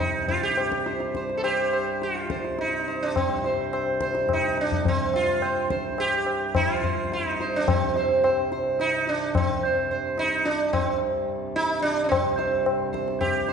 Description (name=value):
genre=indian classical, Hindustani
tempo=107 BPM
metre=4/4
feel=straight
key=C raga bhimpalasi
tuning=A4 = 442 Hz
part: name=sitar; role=melody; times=0.0-13.5 s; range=C4 to C5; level=-24 LUFS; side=right 2 dB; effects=none
part: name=pedal harmonium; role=drone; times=0.0-13.5 s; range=C2 to G2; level=-33 LUFS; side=equal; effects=none
part: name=tabla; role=percussion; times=0.0-13.5 s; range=none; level=-28 LUFS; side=left 4 dB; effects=none
room=wet scoring stage reverb, RT60 1.8 s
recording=recorded in a church or concert hall, nothing above 10.3 kHz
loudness=-22 LUFS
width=side -6 dB against mid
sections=0.0-3.2 A section; 3.2-12.1 B section; 12.1-13.5 C section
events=speeding up 0.0-13.5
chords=none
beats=0.29 | 0.86 1.44 2.01 2.58 | 3.15 3.72 4.29 4.86 | 5.42 5.99 6.55 7.12 | 7.68 8.24 8.79 9.35 | 9.91 10.46 11.01 11.56 | 12.11 12.66 13.21